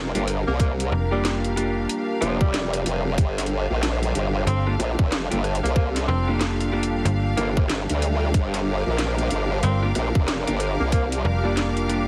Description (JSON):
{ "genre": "glitch hop", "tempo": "93 BPM", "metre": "4/4", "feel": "swing 61% on 16ths", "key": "G minor", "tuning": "A4 = 439 Hz", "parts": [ { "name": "warm analog pad", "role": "sustained chords", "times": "0.0-12.1 s", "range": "G3 to Bb4", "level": "-34 LUFS", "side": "equal", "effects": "chorus, vintage 12-bit sampler grit, sidechain pumping" }, { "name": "formant-sweep wobble bass", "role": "bass", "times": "0.0-11.2 s", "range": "F1 to D2", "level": "-26 LUFS", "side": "equal", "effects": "chorus, overdrive" }, { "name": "clear studio string section", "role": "texture", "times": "0.0-12.1 s", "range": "D4 to D6", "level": "-35 LUFS", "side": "equal", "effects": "sidechain pumping" }, { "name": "clean electric guitar", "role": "stabs", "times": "0.1-12.1 s", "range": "Bb3 to G4", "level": "-30 LUFS", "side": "equal", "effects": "vintage 12-bit sampler grit, sidechain pumping, tape echo" }, { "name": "drum and bass drum kit", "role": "drums", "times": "0.2-12.1 s", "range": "hi-hat, rim click, snare drum", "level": "-31 LUFS", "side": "equal", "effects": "none" }, { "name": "breathy tenor saxophone", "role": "melody", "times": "0.5-11.7 s", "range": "F3 to C4", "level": "-33 LUFS", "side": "equal", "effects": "tape echo" }, { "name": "electronic kick drum", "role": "drums", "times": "0.6-11.1 s", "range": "none", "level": "-22 LUFS", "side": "equal", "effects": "none" }, { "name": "slap-like FM bass", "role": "bass", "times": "0.9-12.1 s", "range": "F1 to G1", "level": "-26 LUFS", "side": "equal", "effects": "none" } ], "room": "light reverb, digital ambience", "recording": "heavily compressed radio sound, vinyl crackle", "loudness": "-23 LUFS", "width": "mono", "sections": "0.0-12.1 A section", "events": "none", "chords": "0.0 Gm7" }